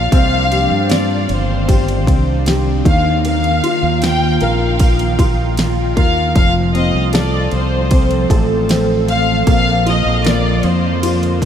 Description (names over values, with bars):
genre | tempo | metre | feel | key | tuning
pop ballad | 77 BPM | 4/4 | straight | unclear | A4 = 440 Hz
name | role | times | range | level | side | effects
warm studio violin section | melody | 0.0-11.4 s | C5 to G5 | -19 LUFS | left 1 dB | analog delay
dark upright piano | accompaniment | 0.0-11.5 s | Eb3 to Bb4 | -20 LUFS | left 3 dB | lush chorus
ethereal airy pad | sustained chords | 0.0-11.5 s | D3 to A4 | -21 LUFS | right 1 dB | ensemble chorus, built-in reverb, phaser
fingered electric bass | bass | 0.0-11.5 s | F1 to G2 | -17 LUFS | right 1 dB | none
pop drum kit | drums | 0.1-11.5 s | kick drum, ride cymbal, snare drum | -18 LUFS | equal | none
room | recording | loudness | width
moderate huge ambient reverb, RT60 8.5 s | dreamy mix soaked in reverb | -12 LUFS | side -9 dB against mid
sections
0.0-11.5 A section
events
none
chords
0.1 Cmadd9; 2.9 Ebsus2; 6.4 F; 9.5 Bb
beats
| 0.12 0.90 1.68 2.46 | 3.24 4.02 4.80 5.58 | 6.36 7.14 7.92 8.69 | 9.47 10.25 11.03